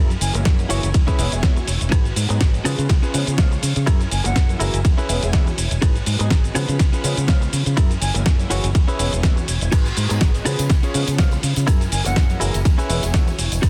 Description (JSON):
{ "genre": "filtered disco house", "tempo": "123 BPM", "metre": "4/4", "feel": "swing 55% on 16ths", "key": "unclear", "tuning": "A4 = 440 Hz", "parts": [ { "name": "string machine, full ensemble", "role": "sustained chords", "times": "0.0-13.7 s", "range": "B3 to B5", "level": "-37 LUFS", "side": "equal", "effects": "ensemble chorus, vintage 12-bit sampler grit, sidechain pumping" }, { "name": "direct-recorded clean electric guitar", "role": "riff", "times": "0.0-13.7 s", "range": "C#4 to C#5", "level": "-30 LUFS", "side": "equal", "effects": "sidechain pumping" }, { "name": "fingered electric bass", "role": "bass", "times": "0.0-13.7 s", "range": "E1 to C#3", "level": "-24 LUFS", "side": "equal", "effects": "sidechain pumping" }, { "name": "dusty soul sampler-style drum kit", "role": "drums", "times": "0.1-13.7 s", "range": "crash cymbal, hi-hat, ride cymbal, rim click, shaker, snare drum", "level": "-27 LUFS", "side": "equal", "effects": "none" }, { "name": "jazz flute", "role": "melody", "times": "0.2-0.3, 4.1-4.6, 8.0-8.1, 11.9-12.4 s", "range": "F#5 to G#5", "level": "-32 LUFS", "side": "equal", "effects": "vintage 12-bit sampler grit, sidechain pumping" }, { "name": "clear grand piano", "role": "accompaniment", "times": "0.3-13.3 s", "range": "E3 to G#4", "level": "-32 LUFS", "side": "equal", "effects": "phaser, sidechain pumping" }, { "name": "electronic kick drum", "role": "drums", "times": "0.5-13.7 s", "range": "none", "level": "-19 LUFS", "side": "equal", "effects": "none" }, { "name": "tambourine", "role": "percussion", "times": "9.7-13.7 s", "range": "none", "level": "-40 LUFS", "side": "equal", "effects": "none" } ], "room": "digital ambience", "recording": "dense, heavily limited modern master", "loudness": "-19 LUFS", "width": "mono", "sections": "0.0-13.7 A section", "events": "none", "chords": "0.0 F#9; 0.9 E6; 1.9 G#m7; 2.7 C#7; 3.9 F#9; 4.8 E6; 5.8 G#m7; 6.6 C#7; 7.8 F#9; 8.7 E6; 9.7 G#m7; 10.5 C#7; 11.7 F#9; 12.7 E6", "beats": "0.46 0.94 1.43 | 1.92 2.41 2.90 3.38 | 3.87 4.36 4.85 5.33 | 5.82 6.31 6.80 7.29 | 7.77 8.26 8.75 9.24 | 9.72 10.21 10.70 11.19 | 11.68 12.16 12.65 13.14 | 13.63" }